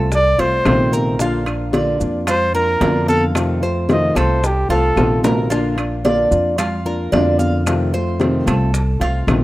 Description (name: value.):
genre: latin, Cuban son and guajira.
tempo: 111 BPM.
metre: 4/4.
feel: straight.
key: Bb major.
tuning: A4 = 440 Hz.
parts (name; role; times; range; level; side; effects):
nylon-string guitar; accompaniment; 0.0-9.4 s; C3 to F4; -21 LUFS; left 2 dB; none.
Cuban tres; arpeggios; 0.0-9.4 s; F4 to F5; -23 LUFS; right 2 dB; none.
upright bass; bass; 0.0-9.4 s; Bb1 to F2; -20 LUFS; equal; none.
warm trumpet; melody; 0.1-5.2 s; G4 to Eb5; -18 LUFS; equal; none.
bongos; percussion; 0.1-9.4 s; none; -25 LUFS; left 3 dB; none.
congas; percussion; 0.1-9.4 s; none; -25 LUFS; left 1 dB; none.
maracas; percussion; 0.1-9.4 s; none; -33 LUFS; right 6 dB; none.
timbales; percussion; 0.4-9.4 s; none; -28 LUFS; right 5 dB; none.
claves; percussion; 0.7-9.4 s; none; -34 LUFS; left 4 dB; none.
room: light reverb, small room reverb.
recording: rough home demo mix.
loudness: -14 LUFS.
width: side -17 dB against mid.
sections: 0.0-5.5 A section; 5.5-9.4 B section.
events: trumpet solo 0.0-5.5; drum fill 4.7-5.5.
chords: 0.0 F7; 1.2 Bb; 3.4 F7; 5.5 Bb; 7.7 F7.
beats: 0.13 0.66 | 1.20 1.74 2.28 2.81 | 3.35 3.89 4.43 4.97 | 5.51 6.05 6.59 7.12 | 7.66 8.20 8.74 9.28.